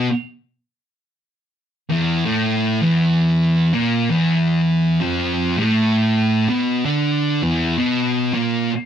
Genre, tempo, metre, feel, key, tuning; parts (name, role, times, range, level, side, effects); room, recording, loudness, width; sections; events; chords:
metal; 65 BPM; 4/4; swing 61% on 8ths; A4 = 441 Hz
thick fuzz guitar; solo; 0.0-8.7 s; E2 to D4; -16 LUFS; equal; distortion
moderate studio ambience, RT60 0.4 s; band playing live in one room; -16 LUFS; side -9 dB against mid
0.0-8.9 A section
0.0 E5